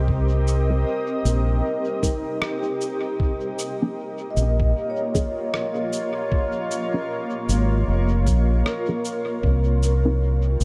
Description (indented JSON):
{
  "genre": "ambient dub",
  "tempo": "77 BPM",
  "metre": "4/4",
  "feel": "swing 59% on 16ths",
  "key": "Bb dorian",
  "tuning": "A4 = 444 Hz",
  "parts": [
    { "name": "granular cloud pad", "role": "sustained chords", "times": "0.0-10.6 s", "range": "Bb3 to Eb5", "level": "-30 LUFS", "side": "equal", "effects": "built-in reverb" },
    { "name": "vibraphone with soft mallets", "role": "arpeggios", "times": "0.0-10.6 s", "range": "Eb4 to Eb5", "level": "-31 LUFS", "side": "equal", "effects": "dub echo" },
    { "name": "fingered electric bass", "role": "bass", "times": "0.0-10.6 s", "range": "F1 to C2", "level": "-22 LUFS", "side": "equal", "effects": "none" },
    { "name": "electronic kick drum", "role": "drums", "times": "0.1-9.6 s", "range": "none", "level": "-26 LUFS", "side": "equal", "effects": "studio reverb" },
    { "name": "electronic shaker and rim click", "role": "drums", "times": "0.5-10.6 s", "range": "none", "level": "-34 LUFS", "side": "equal", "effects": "studio reverb, dub echo" },
    { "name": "filtered dub chord stab", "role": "stabs", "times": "0.7-10.2 s", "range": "F3 to Bb4", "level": "-30 LUFS", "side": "equal", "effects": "analog chorus, dub echo" }
  ],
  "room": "light reverb",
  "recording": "none",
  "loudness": "-23 LUFS",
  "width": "mono",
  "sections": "0.0-10.6 A section",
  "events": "none",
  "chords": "0.0 Cm7; 3.2 Bbm7; 9.4 C7(no3)"
}